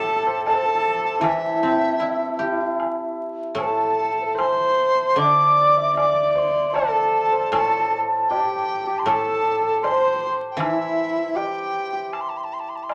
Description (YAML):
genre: chinese traditional, Chinese chamber ensemble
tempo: 77 BPM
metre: 4/4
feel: rubato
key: A yu mode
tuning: A4 = 440 Hz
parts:
  - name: mellow hollow dizi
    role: melody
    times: 0.0-12.9 s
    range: E5 to D6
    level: -26 LUFS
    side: equal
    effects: none
  - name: hammered dulcimer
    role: second line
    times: 0.0-12.9 s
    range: E4 to E5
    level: -26 LUFS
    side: equal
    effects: none
  - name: rich horsehead fiddle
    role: second line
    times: 0.0-12.1 s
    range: E4 to D5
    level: -32 LUFS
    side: equal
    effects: none
  - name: xiao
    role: second line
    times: 0.0-12.1 s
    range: E4 to E5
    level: -28 LUFS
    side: equal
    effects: none
  - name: guzheng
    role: accompaniment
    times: 0.0-12.9 s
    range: A2 to G4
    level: -33 LUFS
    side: equal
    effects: none
  - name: woodblock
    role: percussion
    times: 0.5-12.9 s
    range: none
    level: -32 LUFS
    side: equal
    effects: none
room: wet studio reverb, RT60 0.6 s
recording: vinyl crackle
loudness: -21 LUFS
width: mono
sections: 0.0-12.9 A section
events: none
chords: none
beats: 0.44 | 1.22 2.00 2.78 3.57 | 4.37 5.17 5.97 6.74 | 7.52 8.30 9.07 9.83 | 10.59 11.35 12.11 12.88